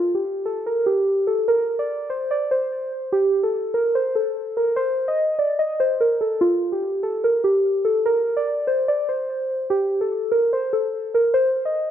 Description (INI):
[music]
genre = hip hop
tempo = 146 BPM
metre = 4/4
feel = half-time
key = G minor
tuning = A4 = 440 Hz
[part]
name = muted felt-like synth keys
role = solo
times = 0.0-11.9 s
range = F4 to Eb5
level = -19 LUFS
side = equal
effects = chorus, low-pass filter
[sound]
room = light reverb, digital ambience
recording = dark, warm production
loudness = -19 LUFS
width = side -10 dB against mid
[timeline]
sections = 0.0-11.9 A section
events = none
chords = none